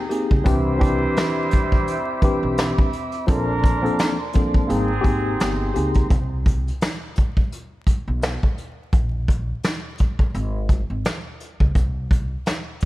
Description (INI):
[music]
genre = hip hop, boom-bap hip-hop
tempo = 85 BPM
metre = 4/4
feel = swing 57% on 16ths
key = C major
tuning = A4 = 436 Hz
[part]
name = mellow tine electric piano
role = accompaniment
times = 0.0-6.1 s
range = E3 to B4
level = -23 LUFS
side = left 1 dB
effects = medium stereo tremolo, high-pass filter, low-pass filter
[part]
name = mellow tonewheel organ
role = sustained chords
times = 0.0-6.1 s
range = Bb3 to D6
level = -30 LUFS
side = equal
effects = slow rotary speaker, high-pass filter, low-pass filter
[part]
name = mellow trumpet section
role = stabs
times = 0.0-5.7 s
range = G3 to C5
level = -28 LUFS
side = right 3 dB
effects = high-pass filter, low-pass filter, tape echo
[part]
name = vintage brush drum kit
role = drums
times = 0.1-12.9 s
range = hi-hat, kick drum, snare drum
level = -20 LUFS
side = equal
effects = none
[part]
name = upright bass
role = bass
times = 0.3-12.3 s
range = G1 to Db2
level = -25 LUFS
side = equal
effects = none
[sound]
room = light reverb, small room ambience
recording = vinyl crackle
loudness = -19 LUFS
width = side -17 dB against mid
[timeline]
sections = 0.0-6.1 A section; 6.1-12.9 B section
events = none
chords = 0.5 Cmaj9; 3.3 Bbmaj9; 4.7 Abmaj9; 6.1 N.C.